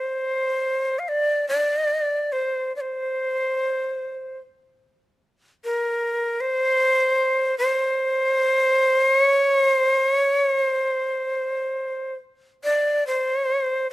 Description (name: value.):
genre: japanese traditional, Japanese chamber music.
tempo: free time.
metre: none.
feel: none.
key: unclear.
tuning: A4 = 440 Hz.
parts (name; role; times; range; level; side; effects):
breathy bright shakuhachi; solo; 0.0-13.9 s; Bb4 to F5; -20 LUFS; equal; none.
room: little or no reverb.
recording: close, detailed microphones.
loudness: -20 LUFS.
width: side -17 dB against mid.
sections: 0.0-13.1 A section.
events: none.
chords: none.